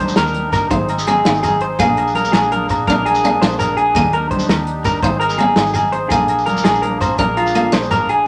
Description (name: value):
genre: highlife guitar band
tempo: 111 BPM (dotted quarters)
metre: 12/8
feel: straight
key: Bb mixolydian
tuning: A4 = 440 Hz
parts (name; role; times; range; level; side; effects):
- accordion; sustained chords; 0.0-8.3 s; Bb3 to Ab4; -26 LUFS; equal; light tremolo tuning
- electric guitar through a small old amp; arpeggios; 0.0-8.3 s; F4 to C5; -19 LUFS; equal; none
- fingered electric bass; bass; 0.0-8.2 s; Ab1 to Eb2; -27 LUFS; equal; none
- congas; percussion; 0.1-8.1 s; none; -29 LUFS; equal; none
- shekere; percussion; 0.1-8.0 s; none; -30 LUFS; equal; none
- warm soul drum kit; drums; 0.2-8.2 s; hi-hat, kick drum, snare drum; -23 LUFS; equal; none
- agogo bells; percussion; 0.2-8.1 s; none; -27 LUFS; equal; none
- picked steel-string acoustic guitar; accompaniment; 0.7-7.9 s; Bb3 to Eb4; -22 LUFS; equal; none
room: moderate studio reverb, RT60 0.6 s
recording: none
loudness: -16 LUFS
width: mono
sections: 0.0-8.3 A section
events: none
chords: 0.0 Ebmaj7; 0.7 Ab; 1.8 Bb7; 4.0 Ebmaj7; 5.0 Ab; 6.1 Bb7